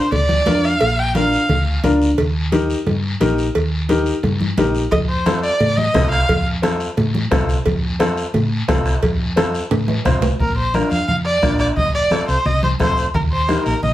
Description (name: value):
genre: latin, cumbia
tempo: 175 BPM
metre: 4/4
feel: straight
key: Bb major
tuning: A4 = 440 Hz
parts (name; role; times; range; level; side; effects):
- warm erhu; melody; 0.0-1.8, 4.9-6.4, 10.4-13.9 s; Bb4 to G5; -19 LUFS; equal; none
- clear upright piano; accompaniment; 0.0-13.7 s; C4 to C5; -20 LUFS; left 2 dB; none
- hollow-body short-scale fingered electric bass; bass; 0.1-13.9 s; F1 to A2; -20 LUFS; equal; none
- congas; percussion; 0.1-13.9 s; none; -24 LUFS; equal; none
- cowbell and timbales; percussion; 0.1-10.3 s; none; -24 LUFS; right 2 dB; none
- guiro; percussion; 0.1-13.9 s; none; -32 LUFS; left 2 dB; none
- bombo; percussion; 4.9-13.7 s; none; -22 LUFS; equal; none
room: wet studio ambience, RT60 0.5 s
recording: heard from further back in the room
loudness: -15 LUFS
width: side -14 dB against mid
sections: 0.0-10.4 A section; 10.4-13.9 B section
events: drum fill 9.7-10.4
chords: 0.0 Bb; 2.2 Eb; 4.9 F; 10.4 Bb; 11.8 F; 13.1 Eb